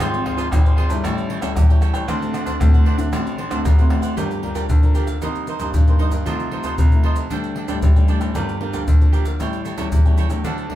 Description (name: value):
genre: samba and choro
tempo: 115 BPM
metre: 4/4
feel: straight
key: G minor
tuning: A4 = 440 Hz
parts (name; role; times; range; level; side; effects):
- cavaquinho; accompaniment; 0.0-10.8 s; D4 to G5; -27 LUFS; right 4 dB; none
- nylon-string guitar; accompaniment; 0.0-10.8 s; G2 to Bb4; -26 LUFS; left 2 dB; none
- bright grand piano; bass; 0.0-10.8 s; G1 to D3; -28 LUFS; right 1 dB; none
- maracas, surdo, pandeiro and tamborim; percussion; 0.0-10.8 s; none; -17 LUFS; equal; none
room: wet studio ambience, RT60 0.5 s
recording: band playing live in one room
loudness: -16 LUFS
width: side -13 dB against mid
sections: 0.0-4.2 A section; 4.2-10.8 B section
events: none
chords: 0.0 Ab6; 1.0 A7; 2.1 D7; 4.2 Gm7; 5.2 Cm7; 6.3 F7/C; 7.3 Dsus4; 8.4 Gm7; 9.4 A7